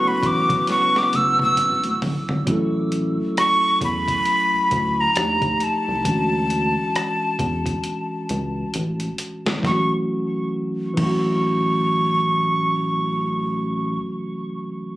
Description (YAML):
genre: R&B, neo-soul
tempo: 67 BPM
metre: 4/4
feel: swing 59% on 16ths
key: A major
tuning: A4 = 440 Hz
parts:
  - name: breathy jazz flute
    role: melody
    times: 0.0-14.0 s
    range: A5 to E6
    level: -21 LUFS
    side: equal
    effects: plate reverb, tape echo
  - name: tine electric piano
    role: accompaniment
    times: 0.0-15.0 s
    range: E3 to A4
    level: -24 LUFS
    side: equal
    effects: plate reverb
  - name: mellow horn section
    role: stabs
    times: 0.0-2.0 s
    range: C#3 to F#4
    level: -26 LUFS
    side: left 1 dB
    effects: plate reverb
  - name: congas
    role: percussion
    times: 0.0-2.3 s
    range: none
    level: -32 LUFS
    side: equal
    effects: none
  - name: rubbery square bass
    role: bass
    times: 0.2-14.0 s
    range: F#1 to E2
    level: -27 LUFS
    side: equal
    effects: none
  - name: boom bap sampler-style drum kit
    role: drums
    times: 0.2-11.3 s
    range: crash cymbal, hi-hat, kick drum, rim click, snare drum, toms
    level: -27 LUFS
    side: equal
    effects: none
room: moderate studio reverb, RT60 0.8 s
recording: recorded on a phone in the room, club reverb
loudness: -19 LUFS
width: side -16 dB against mid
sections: 0.0-2.5 A section; 2.5-9.6 B section; 9.6-13.2 C section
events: drum fill 0.7-2.5, 7.8-9.6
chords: 0.0 A69; 2.5 A6; 5.2 D#maj9#11; 6.0 Dmaj9#11; 9.6 A6